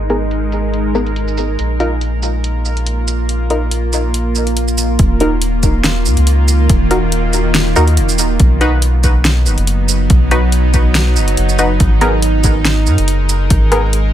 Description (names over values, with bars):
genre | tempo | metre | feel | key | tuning
deep dubstep | 141 BPM | 4/4 | swing 54% on 16ths, half-time | Eb minor | A4 = 439 Hz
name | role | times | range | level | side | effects
bowed-like drone | sustained chords | 0.0-14.1 s | Eb3 to Bb4 | -19 LUFS | right 2 dB | built-in reverb
soft dub sub bass | bass | 0.0-14.1 s | Eb1 to Ab2 | -14 LUFS | equal | tube saturation
filtered dub chord stab | stabs | 0.1-13.8 s | Cb4 to B4 | -19 LUFS | left 1 dB | chorus, dub echo
deep house drum kit | drums | 0.1-14.0 s | hi-hat, shaker, snare drum | -18 LUFS | right 1 dB | overdrive
electronic kick drum | drums | 5.0-13.6 s | none | -14 LUFS | equal | overdrive
room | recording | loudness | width
little or no reverb | low-pass filter | -11 LUFS | side -11 dB against mid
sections
0.0-5.0 A section; 5.0-14.1 B section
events
filter sweep 0.0-5.0; drop 5.0-14.1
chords
0.0 Abmadd9; 1.6 Bb5; 5.0 Ebm; 8.4 B; 11.8 Abmadd9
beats
0.31 0.74 1.17 | 1.59 2.02 2.44 2.87 | 3.29 3.72 4.14 4.57 | 4.99 5.42 5.84 6.27 | 6.70 7.12 7.55 7.97 | 8.40 8.82 9.25 9.68 | 10.10 10.53 10.95 11.38 | 11.80 12.23 12.65 13.08 | 13.51 13.93